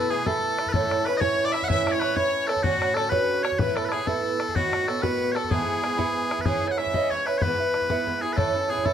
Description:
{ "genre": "celtic folk, Celtic jig", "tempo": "126 BPM (dotted quarters)", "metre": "6/8", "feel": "straight", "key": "E mixolydian", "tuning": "A4 = 440 Hz", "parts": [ { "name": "loud bright bagpipes", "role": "melody", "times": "0.0-8.9 s", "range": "F#4 to G#5", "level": "-26 LUFS", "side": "left 1 dB", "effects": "none" }, { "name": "dark fiddle", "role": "second line", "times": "0.0-8.9 s", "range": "F#4 to E5", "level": "-30 LUFS", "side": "left 6 dB", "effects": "none" }, { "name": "Irish bouzouki", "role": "accompaniment", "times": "0.0-8.9 s", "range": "G#2 to F#4", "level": "-26 LUFS", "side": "right 5 dB", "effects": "none" }, { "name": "bodhran", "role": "percussion", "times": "0.3-8.9 s", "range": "none", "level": "-29 LUFS", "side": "left 2 dB", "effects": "none" } ], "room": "wet studio reverb, RT60 0.7 s", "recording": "none", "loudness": "-22 LUFS", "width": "side -9 dB against mid", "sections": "0.0-6.5 A section; 6.5-8.9 B section", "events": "none", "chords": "0.0 Esus4; 0.7 A; 2.6 Dmaj7; 3.6 Esus4; 4.6 B7; 5.5 E; 6.5 C#m; 7.4 E; 8.4 A" }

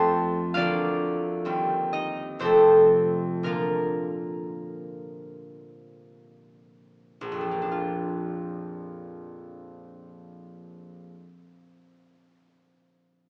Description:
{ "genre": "classical", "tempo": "44-67 BPM", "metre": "3/4", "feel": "rubato", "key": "Bb major", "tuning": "A4 = 439 Hz", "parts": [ { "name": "concert harp", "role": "accompaniment", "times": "0.0-11.2 s", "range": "Bb1 to C6", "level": "-26 LUFS", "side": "equal", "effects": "none" } ], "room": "wet scoring stage reverb, RT60 1.7 s", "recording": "small speaker sound", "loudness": "-25 LUFS", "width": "mono", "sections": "0.0-7.2 A section; 7.2-11.2 B section", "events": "slowing down 0.0-7.2", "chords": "0.0 F; 0.6 Bb/D; 1.5 Cm/Eb; 2.4 F; 3.5 Bb" }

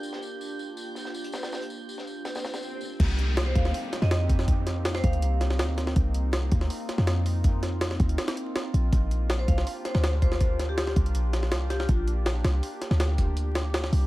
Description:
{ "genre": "drum and bass, jungle", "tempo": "162 BPM", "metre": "4/4", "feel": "straight", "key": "C minor", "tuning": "A4 = 439 Hz", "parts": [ { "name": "warbly tape-like pad", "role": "sustained chords", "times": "0.0-14.1 s", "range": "Bb3 to G4", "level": "-36 LUFS", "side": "right 1 dB", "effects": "chorus, built-in reverb" }, { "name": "crunchy breakbeat drum kit", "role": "drums", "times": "0.0-2.9 s", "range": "hi-hat, snare drum, tambourine", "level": "-37 LUFS", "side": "left 2 dB", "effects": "high-pass filter on hats, high-pass filter on snare, high-pass filter on perc, high-pass filter on room" }, { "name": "drifting glass-harmonics texture", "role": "texture", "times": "0.0-3.0 s", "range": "G6", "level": "-44 LUFS", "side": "right 4 dB", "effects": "chorus, built-in reverb" }, { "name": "swell and downlifter", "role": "sound effects", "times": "2.5-6.0 s", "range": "none", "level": "-39 LUFS", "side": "equal", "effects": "none" }, { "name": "warm 808-style bass", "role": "bass", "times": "3.0-14.1 s", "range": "Bb1 to F2", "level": "-25 LUFS", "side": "equal", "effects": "tube saturation" }, { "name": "jungle sampler-style drum kit", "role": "drums", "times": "3.0-14.0 s", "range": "crash cymbal, hi-hat, kick drum, snare drum", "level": "-27 LUFS", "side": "equal", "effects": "none" }, { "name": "vibraphone with medium mallets", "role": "melody", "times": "3.5-5.4, 9.4-11.9 s", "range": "F4 to F5", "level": "-35 LUFS", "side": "left 1 dB", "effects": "dub echo" } ], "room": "studio reverb", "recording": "vinyl crackle", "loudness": "-24 LUFS", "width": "side -18 dB against mid", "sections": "0.0-3.0 A section; 3.0-14.1 B section", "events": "swell 2.5-3.0; drop 3.0-14.1", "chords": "0.0 Gm7/Bb; 3.0 Cm7; 8.9 Gm7/Bb" }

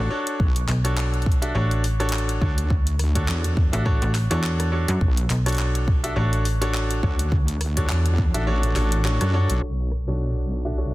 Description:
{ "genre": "glitch hop", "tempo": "104 BPM", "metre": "4/4", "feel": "swing 56% on 16ths", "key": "B minor", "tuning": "A4 = 442 Hz", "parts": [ { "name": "bright baby grand piano", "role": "stabs", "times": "0.0-10.9 s", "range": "D4 to E5", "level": "-27 LUFS", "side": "equal", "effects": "vintage 12-bit sampler grit, sidechain pumping, dub echo" }, { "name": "slap-like FM bass", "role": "bass", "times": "0.0-7.0 s", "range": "A1 to F#2", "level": "-22 LUFS", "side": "equal", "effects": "none" }, { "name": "pop drum kit", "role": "drums", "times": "0.3-10.8 s", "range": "crash cymbal, handclaps, hi-hat, rim click", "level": "-32 LUFS", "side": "equal", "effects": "studio reverb, soft clipping on snare" }, { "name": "wobble bass", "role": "bass", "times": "0.4-10.9 s", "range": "A1 to F#2", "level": "-22 LUFS", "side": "equal", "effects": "chorus" }, { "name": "electronic kick drum", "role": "drums", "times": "0.4-8.3 s", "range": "none", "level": "-22 LUFS", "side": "equal", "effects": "studio reverb" } ], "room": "little or no reverb", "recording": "dense, heavily limited modern master, low-pass filter", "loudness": "-20 LUFS", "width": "side -18 dB against mid", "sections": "0.0-9.6 A section; 9.6-10.9 B section", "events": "kick drops out 8.5-9.6; filter sweep 9.6-10.9", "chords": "0.0 Bm9" }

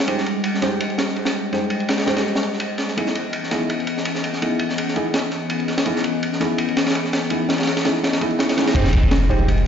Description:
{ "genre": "drum and bass, jungle", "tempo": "166 BPM", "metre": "4/4", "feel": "swing 54% on 16ths", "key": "unclear", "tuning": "A4 = 441 Hz", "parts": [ { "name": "warbly tape-like pad", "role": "sustained chords", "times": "0.0-9.7 s", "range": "Eb3 to Eb5", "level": "-24 LUFS", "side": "left 2 dB", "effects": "chorus, built-in reverb, vintage 12-bit sampler grit" }, { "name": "crunchy breakbeat drum kit", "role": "drums", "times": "0.0-9.7 s", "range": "crash cymbal, kick drum, ride cymbal, snare drum", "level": "-22 LUFS", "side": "equal", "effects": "high-pass filter on kick, high-pass filter on cymbals, high-pass filter on snare, high-pass filter on room" }, { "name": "dark grand piano", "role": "stabs", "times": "0.1-9.5 s", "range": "Cb4 to C5", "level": "-25 LUFS", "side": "right 2 dB", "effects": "vintage 12-bit sampler grit, dub echo" }, { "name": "long sustained 808-style bass", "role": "bass", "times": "8.7-9.6 s", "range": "F1", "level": "-19 LUFS", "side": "equal", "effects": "tube saturation" }, { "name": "sub drop", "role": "sound effects", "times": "8.8-9.7 s", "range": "none", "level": "-24 LUFS", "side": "equal", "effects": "none" } ], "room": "moderate lush hall reverb, RT60 1.8 s, studio reverb", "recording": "played on a big sound system in a bare room, large studio reverb, nothing above 7.5 kHz", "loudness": "-18 LUFS", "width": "side -8 dB against mid", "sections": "0.0-8.8 A section", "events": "impact 8.8-9.7", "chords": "0.0 Fm9 (rootless); 3.0 Dbm9; 8.8 Fm9" }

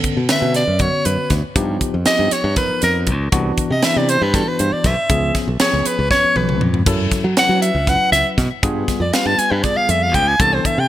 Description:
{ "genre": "electric jazz fusion", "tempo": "238 BPM (eighths)", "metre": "7/8", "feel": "straight", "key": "unclear", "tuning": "A4 = 444 Hz", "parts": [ { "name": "tine electric piano", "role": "accompaniment", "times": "0.0-10.8 s", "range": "D3 to B4", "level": "-24 LUFS", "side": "equal", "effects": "medium stereo tremolo" }, { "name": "modern bright fingered electric bass", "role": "bass", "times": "0.0-10.9 s", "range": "B1 to F#3", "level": "-19 LUFS", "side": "equal", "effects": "none" }, { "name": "crisp fusion drum kit", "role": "drums", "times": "0.0-10.8 s", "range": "crash cymbal, hi-hat, kick drum, snare drum, toms", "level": "-20 LUFS", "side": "equal", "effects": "gated reverb" }, { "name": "clear soprano saxophone", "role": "melody", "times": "0.3-10.9 s", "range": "A4 to A5", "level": "-18 LUFS", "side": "equal", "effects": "none" } ], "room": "light reverb", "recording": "bright 1980s-style digital production", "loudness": "-14 LUFS", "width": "side -13 dB against mid", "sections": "0.0-10.9 A section", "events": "soprano saxophone solo 0.0-10.9; drum fill 6.1-6.9", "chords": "0.0 Bmadd9; 1.6 G7alt; 3.3 Cmaj9#11; 5.1 C#7; 6.9 F#m7; 8.6 G7b9" }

